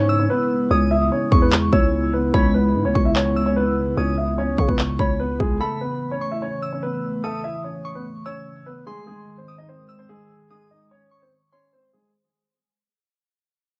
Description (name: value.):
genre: hip hop, trap.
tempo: 147 BPM.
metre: 4/4.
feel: half-time.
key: C# minor.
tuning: A4 = 440 Hz.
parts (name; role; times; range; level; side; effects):
dark grand piano; melody; 0.0-12.1 s; G#3 to E5; -27 LUFS; equal; low-pass filter, cassette tape.
glassy synth bell; second line; 0.0-11.7 s; B5 to E6; -32 LUFS; equal; chorus, tremolo, cassette tape, analog delay.
dark analog pad; sustained chords; 0.0-12.1 s; C#3 to E4; -28 LUFS; equal; chorus, cassette tape.
growling 808-style bass; bass; 0.0-5.6 s; C#2 to C#3; -24 LUFS; equal; none.
trap drum kit; drums; 1.3-5.5 s; handclaps, kick drum; -22 LUFS; equal; vintage 12-bit sampler grit, cassette tape.
room: light reverb.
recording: home recording on cassette, lossy compression artefacts.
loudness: -21 LUFS.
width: mono.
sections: 0.0-12.1 A section.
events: break 0.0-5.6; fade-out 0.4-12.1.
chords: 0.0 C#m7; 5.6 A; 8.9 G#.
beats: 0.30 | 0.71 1.11 1.52 1.93 | 2.34 2.75 3.16 3.56 | 3.97 4.38 4.79 5.20 | 5.61 6.01 6.42 6.83 | 7.24 7.64 8.05 8.46 | 8.87 9.28 9.69 10.09 | 10.50 10.91 11.32 11.73.